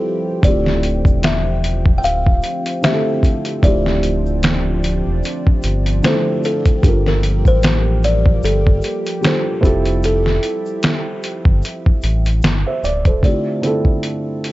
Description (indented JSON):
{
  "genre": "lo-fi hip hop",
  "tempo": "75 BPM",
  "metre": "4/4",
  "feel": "swing 57% on 16ths",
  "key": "D minor",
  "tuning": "A4 = 437 Hz",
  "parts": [
    { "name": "buzzing kalimba", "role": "melody", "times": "0.0-14.5 s", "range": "A4 to G5", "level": "-22 LUFS", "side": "left 2 dB", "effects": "low-pass filter, tape echo" },
    { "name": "felt-muted upright piano", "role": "accompaniment", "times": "0.0-14.5 s", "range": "D3 to E5", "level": "-22 LUFS", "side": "right 2 dB", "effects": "cassette tape, low-pass filter" },
    { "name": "lush unison pad", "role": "sustained chords", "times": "0.0-13.2 s", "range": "F3 to G4", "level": "-26 LUFS", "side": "equal", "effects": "chorus, low-pass filter" },
    { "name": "sub bass with octave", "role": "bass", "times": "0.4-13.2 s", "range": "C#1 to A1", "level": "-18 LUFS", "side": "equal", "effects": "none" },
    { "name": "lo-fi sampler-style drum kit", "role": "drums", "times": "0.4-14.5 s", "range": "finger snaps, hi-hat, kick drum, snare drum", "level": "-16 LUFS", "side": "equal", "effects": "overdrive" },
    { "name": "egg shaker", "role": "percussion", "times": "0.4-13.2 s", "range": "none", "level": "-46 LUFS", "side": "left 6 dB", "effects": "none" }
  ],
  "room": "studio reverb",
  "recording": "cassette tape, nothing above 7.8 kHz",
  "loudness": "-14 LUFS",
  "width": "side -17 dB against mid",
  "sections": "0.0-13.2 A section; 13.2-14.5 B section",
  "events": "none",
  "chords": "0.4 Dm11; 6.8 Gm9; 9.6 Fmaj9; 13.2 Dm11",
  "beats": "| 0.43 1.23 2.03 2.83 | 3.63 4.43 5.23 6.03 | 6.83 7.63 8.43 9.23 | 10.03 10.83 11.63 12.43 | 13.23 14.03"
}